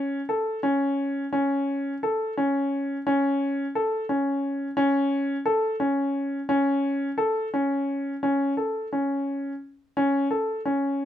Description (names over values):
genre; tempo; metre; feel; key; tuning
contemporary instrumental, contemporary; 174 BPM (eighths); 5/8; straight; unclear; A4 = 440 Hz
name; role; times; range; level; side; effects
warm grand piano; solo; 0.0-11.1 s; C#4 to A4; -23 LUFS; left 1 dB; none
room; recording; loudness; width
light reverb; minimal, uncompressed stereo recording; -23 LUFS; side -11 dB against mid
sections
0.0-8.2 A section; 8.2-11.1 B section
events
none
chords
none